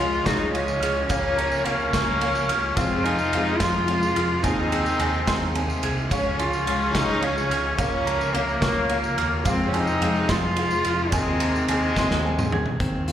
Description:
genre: indie folk with a building arrangement.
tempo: 72 BPM (dotted quarters).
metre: 6/8.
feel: straight.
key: unclear.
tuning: A4 = 440 Hz.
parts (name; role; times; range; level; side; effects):
warm cello; melody; 0.0-12.2 s; Bb3 to F4; -26 LUFS; equal; digital delay.
mellow trumpet; second line; 0.0-12.5 s; Ab3 to F4; -29 LUFS; left 2 dB; digital delay.
picked twelve-string acoustic guitar; accompaniment; 0.0-12.8 s; Db3 to Bb4; -30 LUFS; left 4 dB; slapback echo.
warm grand piano; accompaniment; 0.0-12.8 s; F1 to Db5; -38 LUFS; right 2 dB; none.
mellow tonewheel organ; sustained chords; 0.0-12.8 s; C3 to Bb4; -35 LUFS; equal; none.
warm upright piano; arpeggios; 0.0-12.8 s; F5 to Ab6; -32 LUFS; right 7 dB; slapback echo.
picked electric bass; bass; 0.0-13.1 s; C2 to F2; -28 LUFS; equal; none.
tambourine; percussion; 0.1-12.5 s; none; -41 LUFS; right 2 dB; none.
loose indie drum kit; drums; 0.3-13.1 s; hi-hat, kick drum, ride cymbal, snare drum, toms; -27 LUFS; equal; none.
fingerpicked plugged-in steel-string acoustic guitar; accompaniment; 12.8-13.1 s; Eb3 to F4; -28 LUFS; left 1 dB; none.
room: light reverb.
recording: live gig heard through the venue's PA, recital hall reverb.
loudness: -20 LUFS.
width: side -10 dB against mid.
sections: 0.0-12.8 A section.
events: drum fill 12.0-12.8.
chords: 0.0 Db; 1.1 Bbm/Db; 2.8 Fm; 4.4 Abadd9/Eb; 6.1 Db; 7.8 Bbm/Db; 9.4 Fm; 11.1 Abadd9/Eb.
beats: 0.26 | 1.09 1.93 | 2.76 3.60 | 4.43 5.27 | 6.10 6.94 | 7.78 8.61 | 9.45 10.28 | 11.12 11.96 | 12.80.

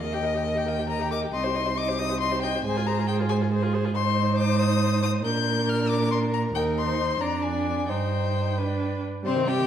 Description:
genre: quick classical-period movement for string quartet.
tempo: 92 BPM (dotted quarters).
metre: 6/8.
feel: straight.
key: unclear.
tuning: A4 = 440 Hz.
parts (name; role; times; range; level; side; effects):
rich violin; melody; 0.0-9.7 s; C5 to G6; -29 LUFS; left 7 dB; none.
rich violin; second line; 0.0-9.7 s; C4 to G5; -29 LUFS; left 3 dB; none.
rich viola; accompaniment; 0.0-9.7 s; Eb3 to Bb4; -31 LUFS; right 2 dB; none.
warm cello; bass; 0.0-9.7 s; C2 to C3; -26 LUFS; right 4 dB; none.
room: wet stone room reverb, RT60 1.3 s.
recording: dark, warm production.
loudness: -23 LUFS.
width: side -9 dB against mid.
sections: 0.0-9.2 A section.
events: none.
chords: 0.0 Eb; 1.3 Cm; 2.6 Fm/Ab; 3.9 Ab; 5.2 Bb; 6.5 Eb5; 7.2 Ddim/F; 7.9 Cm/G; 8.6 G.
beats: | 0.01 0.68 | 1.33 1.99 | 2.64 3.29 | 3.94 4.59 | 5.25 5.89 | 6.55 7.21 | 7.89 8.57 | 9.25.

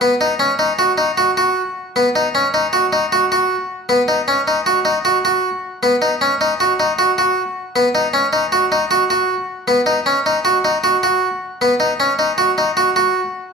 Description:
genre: contemporary instrumental, contemporary.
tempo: 155 BPM.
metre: 5/4.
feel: straight.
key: unclear.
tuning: A4 = 440 Hz.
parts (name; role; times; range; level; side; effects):
harpsichord; solo; 0.0-13.2 s; B3 to F#4; -14 LUFS; equal; none.
room: wet recital hall reverb, RT60 1.5 s.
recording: minimal, uncompressed stereo recording.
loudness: -14 LUFS.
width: side -5 dB against mid.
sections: 0.0-13.5 A section.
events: none.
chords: none.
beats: | 0.03 0.41 0.80 1.19 1.57 | 1.96 2.35 2.73 3.12 3.51 | 3.89 4.28 4.67 5.05 5.44 | 5.83 6.21 6.60 6.99 7.37 | 7.76 8.14 8.53 8.91 9.30 | 9.69 10.07 10.46 10.84 11.23 | 11.62 12.00 12.39 12.77 13.16.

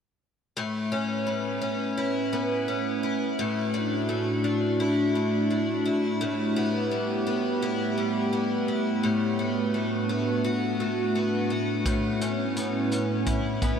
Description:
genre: dream pop.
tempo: 85 BPM.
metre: 4/4.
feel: straight.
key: A mixolydian.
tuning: A4 = 435 Hz.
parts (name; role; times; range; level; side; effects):
warbly tape-like pad; sustained chords; 1.1-13.8 s; A2 to B4; -27 LUFS; right 2 dB; chorus, built-in reverb.
picked twelve-string acoustic guitar; arpeggios; 0.6-13.8 s; A2 to F#4; -27 LUFS; left 2 dB; wide subtle chorus, ping-pong delay.
vintage drum kit; drums; 11.9-13.8 s; hi-hat, kick drum; -30 LUFS; equal; none.
room: wet huge ambient reverb, RT60 7.5 s.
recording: dreamy mix soaked in reverb.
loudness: -24 LUFS.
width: side -7 dB against mid.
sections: 0.6-13.8 A section.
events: none.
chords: 0.6 Aadd9; 3.4 Dadd9/A; 6.2 Em/A; 9.0 Bm/A; 11.9 Aadd9.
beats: | 0.56 1.27 1.98 2.68 | 3.39 4.09 4.80 5.50 | 6.21 6.92 7.62 8.33 | 9.03 9.74 10.45 11.15 | 11.86 12.56 13.27.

